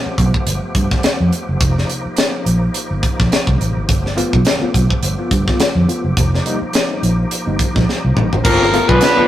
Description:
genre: funk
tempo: 105 BPM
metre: 4/4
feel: swing 56% on 16ths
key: G mixolydian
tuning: A4 = 440 Hz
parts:
  - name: bright tonewheel organ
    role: sustained chords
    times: 0.0-8.4 s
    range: F3 to G4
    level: -25 LUFS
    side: equal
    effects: chorus vibrato, fast rotary speaker
  - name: vintage muted fingered electric bass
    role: bass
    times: 0.1-9.2 s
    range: F1 to G2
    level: -17 LUFS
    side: equal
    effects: none
  - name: tight funk drum kit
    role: drums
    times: 0.2-9.2 s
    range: crash cymbal, hi-hat, kick drum, snare drum, toms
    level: -17 LUFS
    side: equal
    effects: none
  - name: overdriven reed electric piano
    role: stabs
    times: 3.9-9.3 s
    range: G2 to F4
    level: -22 LUFS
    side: left 1 dB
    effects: tremolo
  - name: breathy trumpet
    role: melody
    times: 8.4-9.3 s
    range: Bb4 to B4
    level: -15 LUFS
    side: equal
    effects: none
  - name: overdriven semi-hollow guitar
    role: accompaniment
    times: 8.4-9.3 s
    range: B3 to B4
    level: -15 LUFS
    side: left 3 dB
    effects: spring reverb
  - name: mellow horn section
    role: second line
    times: 8.7-9.2 s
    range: F3 to B4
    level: -18 LUFS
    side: right 1 dB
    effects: none
room: moderate stone room reverb, RT60 1.5 s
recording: rough rehearsal-room recording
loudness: -13 LUFS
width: side -12 dB against mid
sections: 0.0-8.4 A section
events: drum fill 7.9-8.4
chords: 0.0 G9; 1.6 F9sus4; 3.9 G9; 6.2 F9sus4; 8.4 G9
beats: 0.46 1.03 | 1.60 2.18 2.75 3.32 | 3.89 4.46 5.03 5.60 | 6.17 6.74 7.31 7.88 | 8.45 9.01

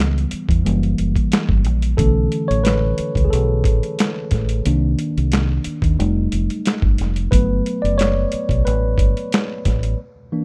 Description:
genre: R&B, neo-soul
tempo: 90 BPM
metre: 4/4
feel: straight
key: unclear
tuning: A4 = 441 Hz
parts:
  - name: tine electric piano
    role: accompaniment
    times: 0.0-10.4 s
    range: D3 to D5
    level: -24 LUFS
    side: equal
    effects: none
  - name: deep dub fingered electric bass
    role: bass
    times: 0.0-9.9 s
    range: F1 to E2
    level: -21 LUFS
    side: equal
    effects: none
  - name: boom bap sampler-style drum kit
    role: drums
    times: 0.0-10.0 s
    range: finger snaps, hi-hat, kick drum, snare drum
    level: -22 LUFS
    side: equal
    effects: none
room: little or no reverb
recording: rough home demo mix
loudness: -19 LUFS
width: mono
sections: 0.0-10.4 A section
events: tine electric piano solo 0.0-10.4; break 10.0-10.4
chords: 0.0 C#m7b5; 0.6 F#7b9; 2.0 Bm11; 4.6 Cm7; 6.0 F9; 7.3 Gmaj9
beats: 0.65 1.31 | 1.98 2.65 3.31 3.98 | 4.65 5.31 5.98 6.65 | 7.31 7.98 8.65 9.31 | 9.98

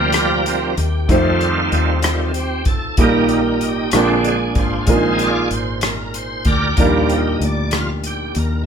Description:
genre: slow gospel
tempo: 63 BPM (dotted quarters)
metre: 6/8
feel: straight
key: Eb major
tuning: A4 = 440 Hz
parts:
  - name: clear concert grand piano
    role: accompaniment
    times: 0.0-8.7 s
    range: Bb2 to C5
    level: -20 LUFS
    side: right 2 dB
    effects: none
  - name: bright tonewheel organ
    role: sustained chords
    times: 0.0-8.7 s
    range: D3 to Eb5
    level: -20 LUFS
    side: right 2 dB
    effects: slow rotary speaker, chorus vibrato
  - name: fingered electric bass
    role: bass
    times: 0.0-8.7 s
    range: Ab1 to F2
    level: -22 LUFS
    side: left 1 dB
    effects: none
  - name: natural country drum kit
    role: drums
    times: 0.1-8.5 s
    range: hi-hat, kick drum, rim click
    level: -20 LUFS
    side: equal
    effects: none
room: moderate large studio reverb, RT60 1.0 s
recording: band playing live in one room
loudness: -15 LUFS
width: side -7 dB against mid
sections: 0.0-8.7 A section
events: tonewheel organ solo 0.0-8.7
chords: 0.0 Eb6; 1.1 F7; 3.0 Eb/Bb; 3.9 Bb7; 4.9 Bb7sus4; 6.8 Ebmaj7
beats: 0.14 | 1.08 2.03 | 2.98 3.93 | 4.88 5.83 | 6.78 7.73

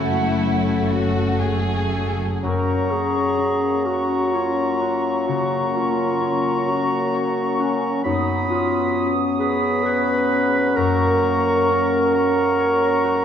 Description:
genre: classical, slow romantic movement for symphony orchestra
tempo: 37-45 BPM (dotted quarters)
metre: 12/8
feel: rubato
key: F# major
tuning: A4 = 441 Hz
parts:
  - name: rich chamber violin section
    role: melody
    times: 0.0-2.2 s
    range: F#4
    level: -33 LUFS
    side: left 2 dB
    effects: none
  - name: large flute ensemble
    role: second line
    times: 0.0-13.2 s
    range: F#5 to D#6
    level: -27 LUFS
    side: left 1 dB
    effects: none
  - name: rich chamber violin section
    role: second line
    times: 0.0-2.4 s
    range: E4 to G#4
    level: -28 LUFS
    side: left 2 dB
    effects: none
  - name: rich chamber viola section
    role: accompaniment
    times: 0.0-2.2 s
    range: A3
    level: -28 LUFS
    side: left 2 dB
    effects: none
  - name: mellow French horn section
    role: sustained chords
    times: 0.0-13.2 s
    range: A3 to C#4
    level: -25 LUFS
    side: left 4 dB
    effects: none
  - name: concert harp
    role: arpeggios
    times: 0.0-13.2 s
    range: F#2 to C#5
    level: -27 LUFS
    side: left 5 dB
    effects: none
  - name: dark chamber double bass section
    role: bass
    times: 0.0-2.2 s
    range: F#1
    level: -26 LUFS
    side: right 3 dB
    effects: none
  - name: warm chamber cello section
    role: bass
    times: 0.0-2.2 s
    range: F#2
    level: -27 LUFS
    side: right 2 dB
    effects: none
  - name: clear oboe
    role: second line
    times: 2.4-13.2 s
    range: A#5 to B5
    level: -27 LUFS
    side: right 1 dB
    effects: none
  - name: dark clarinet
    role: second line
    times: 2.4-13.2 s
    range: C#4 to B4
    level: -22 LUFS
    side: right 2 dB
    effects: none
  - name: mellow bassoon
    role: accompaniment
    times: 2.4-13.2 s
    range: F#3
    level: -26 LUFS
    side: right 1 dB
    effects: none
room: wet scoring stage reverb, RT60 1.9 s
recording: none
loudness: -18 LUFS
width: side -8 dB against mid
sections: 0.0-2.4 A section; 2.4-13.2 B section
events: none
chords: 0.0 F#m; 2.4 F#; 8.1 C#5/F#; 10.8 F#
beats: 0.87 | 2.44 3.86 5.29 6.69 | 8.06 9.41 10.78 12.15

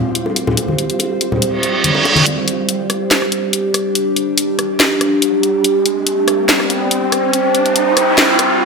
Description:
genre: deep dubstep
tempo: 142 BPM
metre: 4/4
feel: half-time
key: unclear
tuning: A4 = 439 Hz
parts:
  - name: overtone-sweeping drone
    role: sustained chords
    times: 0.0-8.7 s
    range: G3 to C5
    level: -16 LUFS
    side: right 1 dB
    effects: chorus, built-in reverb
  - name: flickering grainy texture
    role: texture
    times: 0.0-2.3 s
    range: G3 to F4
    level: -26 LUFS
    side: left 2 dB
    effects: built-in reverb
  - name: garage drum kit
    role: drums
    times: 0.2-8.5 s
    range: handclaps, hi-hat, rim click, snare drum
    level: -15 LUFS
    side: left 1 dB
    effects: small room ambience
  - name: bongos and congas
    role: percussion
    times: 0.3-2.2 s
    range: none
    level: -20 LUFS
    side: left 2 dB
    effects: dub echo
  - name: reverse cymbal, riser and noise sweep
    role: sound effects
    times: 1.6-8.7 s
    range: none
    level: -18 LUFS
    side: right 2 dB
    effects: none
room: moderate lush hall reverb, RT60 2.0 s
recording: none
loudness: -12 LUFS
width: side -4 dB against mid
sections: 0.0-2.3 A section; 2.3-8.7 B section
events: reverse cymbal 1.6-2.3; build-up 2.3-8.7; riser 2.3-8.7; noise sweep 7.3-8.7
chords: 0.0 G5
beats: 0.15 | 0.57 1.00 1.42 1.84 | 2.26 2.69 3.11 3.53 | 3.95 4.38 4.80 5.22 | 5.64 6.07 6.49 6.91 | 7.33 7.76 8.18 8.60

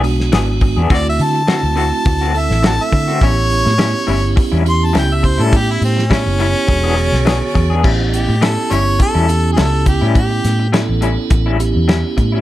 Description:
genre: straight-eighth soul blues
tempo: 104 BPM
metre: 4/4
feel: swing 54% on 16ths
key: A mixolydian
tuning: A4 = 440 Hz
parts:
  - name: tonewheel organ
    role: accompaniment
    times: 0.0-12.4 s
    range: D3 to A4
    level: -21 LUFS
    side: right 6 dB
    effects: slow rotary speaker, overdrive
  - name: electric guitar through a small old amp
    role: stabs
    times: 0.0-12.4 s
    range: A2 to G#4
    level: -22 LUFS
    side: left 5 dB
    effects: tremolo
  - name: vintage muted fingered electric bass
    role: bass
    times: 0.0-12.4 s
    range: E1 to D3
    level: -16 LUFS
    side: equal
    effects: none
  - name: cloth-damped thuddy drum kit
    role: drums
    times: 0.0-12.3 s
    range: crash cymbal, hi-hat, kick drum, snare drum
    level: -17 LUFS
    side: equal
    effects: none
  - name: clear harmonica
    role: melody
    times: 0.9-10.7 s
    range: C4 to C6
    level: -19 LUFS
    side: equal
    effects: none
room: studio ambience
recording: none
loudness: -12 LUFS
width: side -14 dB against mid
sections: 0.0-7.8 A section; 7.8-12.4 B section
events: harmonica solo 0.0-7.8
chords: 0.0 E7; 0.9 D7; 3.2 A7; 6.7 E7; 7.8 A7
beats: 0.33 | 0.91 1.48 2.06 2.64 | 3.22 3.79 4.37 4.95 | 5.53 6.11 6.68 7.26 | 7.84 8.42 9.00 9.57 | 10.15 10.73 11.31 11.89

